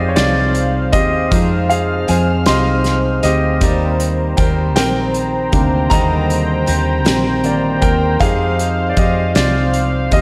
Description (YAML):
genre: six-eight pop ballad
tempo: 52 BPM (dotted quarters)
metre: 6/8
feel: straight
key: unclear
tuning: A4 = 440 Hz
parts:
  - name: clear baby grand piano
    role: accompaniment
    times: 0.0-10.2 s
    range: C3 to C6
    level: -21 LUFS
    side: equal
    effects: slapback echo
  - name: warm analog pad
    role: sustained chords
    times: 0.0-10.2 s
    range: C5 to F6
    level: -24 LUFS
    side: equal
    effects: chorus
  - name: picked steel-string acoustic guitar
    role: arpeggios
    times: 0.0-10.2 s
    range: Eb3 to Bb4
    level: -24 LUFS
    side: equal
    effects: none
  - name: vintage muted fingered electric bass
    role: bass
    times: 0.0-10.2 s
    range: Bb1 to F2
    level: -21 LUFS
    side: equal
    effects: none
  - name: loose indie drum kit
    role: drums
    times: 0.2-10.2 s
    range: hi-hat, kick drum, snare drum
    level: -21 LUFS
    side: equal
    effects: none
room: moderate lush hall reverb, RT60 2.0 s, small room ambience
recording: big arena sound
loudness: -15 LUFS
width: mono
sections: 0.0-10.2 A section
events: grand piano solo 0.0-10.2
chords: 0.0 Fm7; 3.6 Cm7; 8.2 Fm7